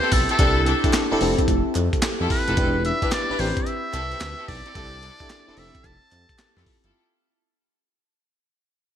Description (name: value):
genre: R&B, new jack swing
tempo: 110 BPM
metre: 4/4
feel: swing 65% on 16ths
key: unclear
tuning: A4 = 440 Hz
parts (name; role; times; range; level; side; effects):
- trumpet with metal mute; melody; 0.0-6.7 s; A4 to A5; -27 LUFS; equal; digital delay
- FM electric piano; accompaniment; 0.0-7.0 s; C4 to B4; -25 LUFS; left 1 dB; chorus
- clear studio string section; stabs; 0.0-7.0 s; C4 to B4; -29 LUFS; left 1 dB; none
- smooth synth bass; bass; 0.1-6.9 s; E1 to F2; -26 LUFS; equal; none
- breakbeat sampler-style drum kit; drums; 0.1-6.9 s; handclaps, hi-hat, kick drum, snare drum, tambourine; -24 LUFS; equal; none
- group handclap; percussion; 0.9-6.6 s; none; -41 LUFS; right 5 dB; none
room: moderate lush hall reverb, RT60 1.8 s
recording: bright 1980s-style digital production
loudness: -19 LUFS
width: side -9 dB against mid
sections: 0.0-6.9 A section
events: fade-out 0.0-6.9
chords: 0.4 C69; 1.2 Fmaj9; 2.6 Em7; 3.4 Am7; 4.8 C69; 5.6 Fmaj9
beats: | 0.39 0.94 1.48 2.03 | 2.57 3.12 3.66 4.21 | 4.75 5.30 5.84 6.39